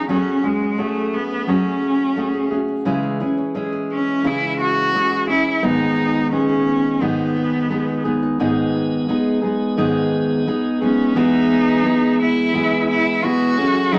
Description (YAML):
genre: acoustic pop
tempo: 87 BPM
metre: 4/4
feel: straight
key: E major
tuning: A4 = 440 Hz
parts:
  - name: clear cello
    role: melody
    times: 0.0-14.0 s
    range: G#3 to F#4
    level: -22 LUFS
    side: equal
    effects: none
  - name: fingerpicked steel-string acoustic guitar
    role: accompaniment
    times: 0.0-14.0 s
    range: G#2 to G#4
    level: -21 LUFS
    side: equal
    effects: none
  - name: flamenco guitar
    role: arpeggios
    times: 0.0-14.0 s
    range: E3 to G#4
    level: -33 LUFS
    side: equal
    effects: none
  - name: tonewheel organ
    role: sustained chords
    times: 8.4-14.0 s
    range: E3 to G#4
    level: -29 LUFS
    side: equal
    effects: slow rotary speaker
room: wet studio reverb, RT60 0.6 s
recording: none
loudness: -19 LUFS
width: mono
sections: 0.0-8.4 A section; 8.4-11.2 B section; 11.2-14.0 C section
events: none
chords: 0.0 F#madd9; 2.9 C#m; 5.6 G#m; 11.2 E